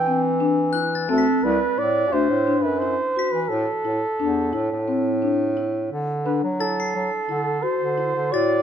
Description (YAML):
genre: contemporary instrumental, chamber music in an uneven meter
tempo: 174 BPM (eighths)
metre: 7/8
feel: straight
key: unclear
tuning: A4 = 439 Hz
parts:
  - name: breathy flugelhorn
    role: melody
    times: 0.0-8.6 s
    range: A4 to G5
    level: -24 LUFS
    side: right 3 dB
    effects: none
  - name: warm bass clarinet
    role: bass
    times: 0.0-8.6 s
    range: C2 to F#3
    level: -24 LUFS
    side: equal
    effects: none
  - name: glockenspiel with brass mallets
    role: texture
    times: 0.0-8.6 s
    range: E6 to C7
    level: -33 LUFS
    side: left 5 dB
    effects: none
  - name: marimba with soft mallets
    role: arpeggios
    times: 0.1-8.5 s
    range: C4 to F#4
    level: -25 LUFS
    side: left 3 dB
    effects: none
room: moderate recital hall reverb, RT60 1.7 s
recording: minimal, uncompressed stereo recording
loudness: -20 LUFS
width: side -8 dB against mid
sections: 0.0-5.9 A section; 5.9-8.6 B section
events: none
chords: 0.0 E5; 1.1 D5; 3.5 A5; 5.9 D7